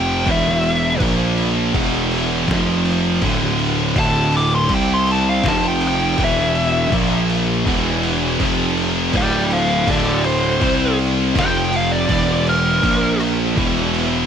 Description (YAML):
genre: stoner and doom metal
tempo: 81 BPM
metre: 4/4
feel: straight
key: unclear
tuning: A4 = 440 Hz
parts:
  - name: fuzz lead guitar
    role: melody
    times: 0.0-13.2 s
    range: A4 to D6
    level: -20 LUFS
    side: left 1 dB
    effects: wah, distortion, ping-pong delay
  - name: heavy high-gain guitar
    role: riff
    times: 0.0-14.3 s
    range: D2 to C4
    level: -22 LUFS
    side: equal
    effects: distortion
  - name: thick fuzz guitar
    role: riff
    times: 0.0-14.3 s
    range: D2 to C4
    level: -24 LUFS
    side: left 11 dB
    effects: distortion
  - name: thick fuzz guitar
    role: riff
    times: 0.0-14.3 s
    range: D2 to C4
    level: -22 LUFS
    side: right 10 dB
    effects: distortion
  - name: fuzz picked electric bass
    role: bass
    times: 0.0-14.3 s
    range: D1 to C2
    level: -23 LUFS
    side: equal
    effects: overdrive
  - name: trip hop sampler-style drum kit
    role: drums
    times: 0.3-14.1 s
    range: crash cymbal, kick drum, snare drum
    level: -25 LUFS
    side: equal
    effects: none
room: little or no reverb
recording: none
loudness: -15 LUFS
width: side -8 dB against mid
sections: 0.0-14.3 A section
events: lead electric guitar solo 0.0-14.3; kick and snare drop out 8.4-9.9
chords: 0.3 E5; 1.0 Bb5; 1.7 E5; 2.5 F5; 3.2 D5; 4.7 C5; 5.4 F5; 6.2 E5; 6.9 Bb5; 7.7 E5; 8.4 F5; 9.1 D5; 10.6 C5; 11.4 F5; 12.1 E5; 12.8 Bb5; 13.6 E5